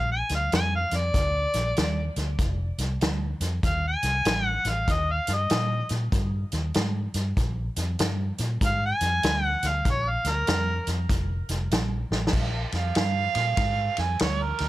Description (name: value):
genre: electric blues shuffle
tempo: 96 BPM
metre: 4/4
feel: swing 63% on 8ths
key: Bb mixolydian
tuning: A4 = 439 Hz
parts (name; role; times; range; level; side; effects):
- mellow harmonica; melody; 0.0-10.9 s; Bb4 to Ab5; -27 LUFS; equal; tape echo
- vintage muted fingered electric bass; bass; 0.0-14.7 s; F1 to Bb2; -28 LUFS; equal; none
- vintage drum kit; drums; 0.3-14.7 s; crash cymbal, hi-hat, kick drum, ride cymbal, snare drum; -28 LUFS; equal; none
- mellow harmonica; second line; 12.8-14.7 s; Bb4 to Ab5; -26 LUFS; right 8 dB; overdrive
room: little or no reverb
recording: none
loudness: -23 LUFS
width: side -16 dB against mid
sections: 0.0-12.3 A section; 12.3-14.7 A section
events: harmonica solo 0.0-12.3, 12.3-14.7; drum fill 12.0-12.3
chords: 0.0 Bb; 2.4 F7; 4.9 Eb; 7.4 Bb7; 11.1 F; 12.3 Bb7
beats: 0.53 1.15 1.77 | 2.40 3.02 3.64 4.26 | 4.88 5.50 6.13 6.75 | 7.37 7.99 8.61 9.23 | 9.86 10.48 11.10 11.72 | 12.34 12.96 13.58 14.20